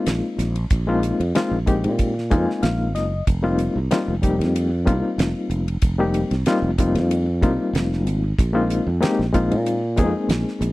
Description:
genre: electric jazz fusion.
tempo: 94 BPM.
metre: 4/4.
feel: swing 54% on 16ths.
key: F minor.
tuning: A4 = 438 Hz.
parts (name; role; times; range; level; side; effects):
overdriven reed electric piano; accompaniment; 0.0-10.7 s; G3 to Ab5; -22 LUFS; left 2 dB; fast tremolo.
sustaining fretless electric bass; bass; 0.1-10.7 s; F1 to Bb2; -22 LUFS; right 1 dB; none.
damped 70s drum kit; drums; 0.1-10.7 s; hi-hat, kick drum, ride cymbal, snare drum; -22 LUFS; right 1 dB; none.
room: little or no reverb.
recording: dry, close 1970s-style studio recording.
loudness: -18 LUFS.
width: side -19 dB against mid.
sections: 0.0-10.7 A section.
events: reed electric piano fill 2.0-3.3.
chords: 0.0 Bb9sus4; 3.3 F9sus4; 8.4 Bb9sus4.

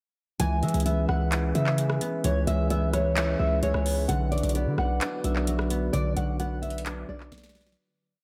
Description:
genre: hip hop, trap.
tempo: 130 BPM.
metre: 4/4.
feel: half-time.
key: C# phrygian.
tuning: A4 = 440 Hz.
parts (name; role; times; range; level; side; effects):
nylon-string guitar; melody; 0.4-7.7 s; C#5 to G#5; -33 LUFS; equal; subtle chorus.
concert harp; accompaniment; 0.4-8.2 s; D3 to E4; -33 LUFS; equal; none.
glass harmonica; sustained chords; 0.4-7.7 s; B3 to E5; -37 LUFS; equal; none.
hard-hitting 808-style bass; bass; 0.4-7.8 s; B1 to E3; -29 LUFS; equal; none.
trap drum kit; drums; 0.4-7.8 s; handclaps, hi-hat, rim click, snare drum; -36 LUFS; equal; none.
room: moderate plate reverb, RT60 2.2 s.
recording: dreamy mix soaked in reverb.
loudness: -26 LUFS.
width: mono.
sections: 0.4-7.8 hook.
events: fade-out 5.9-7.8; drum fill 7.3-7.8.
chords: 0.4 C#m7; 4.1 Bm.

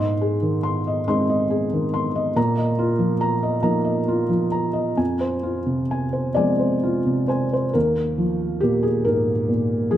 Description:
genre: neoclassical minimalist piano.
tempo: 43-47 BPM (dotted quarters).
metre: 6/8.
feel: rubato.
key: unclear.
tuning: A4 = 440 Hz.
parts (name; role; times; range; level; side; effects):
felt-muted upright piano; solo; 0.0-10.0 s; Eb2 to C6; -19 LUFS; equal; none.
room: moderate scoring stage reverb, RT60 2.0 s.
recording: dark, warm production.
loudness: -19 LUFS.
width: side -12 dB against mid.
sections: 0.0-7.7 A section; 7.7-10.0 B section.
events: none.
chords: 0.0 Ab; 2.4 Bbsus4; 5.0 Fm; 7.7 Ebsus2.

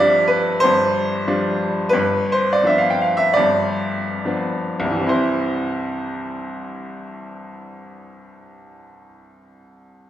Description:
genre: classical, romantic nocturne for solo piano.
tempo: 31-48 BPM.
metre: 4/4.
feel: rubato.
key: C major.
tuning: A4 = 440 Hz.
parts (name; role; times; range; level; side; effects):
bright upright piano; solo; 0.0-10.1 s; G1 to G5; -17 LUFS; equal; none.
room: wet recital hall reverb, RT60 1.5 s.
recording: recorded in a church or concert hall.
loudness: -17 LUFS.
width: side -12 dB against mid.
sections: 0.0-5.1 A section; 5.1-10.1 B section.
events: slowing down 0.0-5.1.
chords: 0.0 G7sus4; 5.1 C.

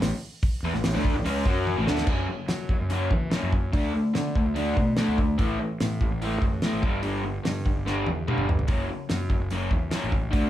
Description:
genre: classic rock.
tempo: 145 BPM.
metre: 4/4.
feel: straight.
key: unclear.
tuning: A4 = 440 Hz.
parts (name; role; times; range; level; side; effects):
crunchy overdriven guitar; riff; 0.0-10.5 s; F#2 to F#4; -27 LUFS; left 1 dB; none.
fuzz fingered electric bass; bass; 0.0-10.5 s; F#1 to F#3; -30 LUFS; equal; overdrive.
damped 70s drum kit; drums; 0.0-10.4 s; crash cymbal, hi-hat, kick drum, snare drum, toms; -26 LUFS; equal; none.
room: light reverb.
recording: small room ambience.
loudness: -23 LUFS.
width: side -12 dB against mid.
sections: 0.0-2.1 A section; 2.1-10.5 B section.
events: drum fill 1.7-2.1, 7.9-8.7.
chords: 0.0 A; 2.1 F#5; 3.7 D5; 5.4 A5; 6.8 G5; 8.7 F#m.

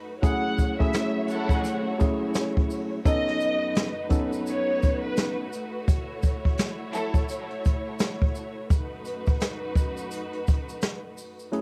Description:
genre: hip hop, boom-bap hip-hop.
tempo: 85 BPM.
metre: 4/4.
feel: swing 61% on 16ths.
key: unclear.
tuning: A4 = 440 Hz.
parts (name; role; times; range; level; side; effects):
warm studio string section; sustained chords; 0.0-11.5 s; F#2 to C#5; -37 LUFS; equal; high-pass filter, low-pass filter, cassette tape.
warm studio violin section; melody; 0.2-5.3 s; B4 to F#5; -32 LUFS; equal; high-pass filter, low-pass filter, cassette tape.
tine electric piano; accompaniment; 0.2-5.4, 11.5-11.6 s; F#3 to A4; -30 LUFS; equal; overdrive, cassette tape, high-pass filter, low-pass filter.
jazz brush drum kit; drums; 0.2-11.6 s; hi-hat, kick drum, snare drum; -26 LUFS; equal; cassette tape.
tube shaker; percussion; 0.2-11.5 s; none; -50 LUFS; equal; none.
rich symphonic string section; stabs; 1.3-1.8, 6.9-7.2 s; F#3 to A4; -38 LUFS; equal; high-pass filter, low-pass filter, cassette tape, analog delay.
room: light reverb.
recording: home recording on cassette.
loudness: -26 LUFS.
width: mono.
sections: 0.0-11.5 A section.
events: break 5.9-11.5.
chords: 0.2 F#m7; 3.1 B7/F#; 5.9 F#m7; 8.7 B7/F#.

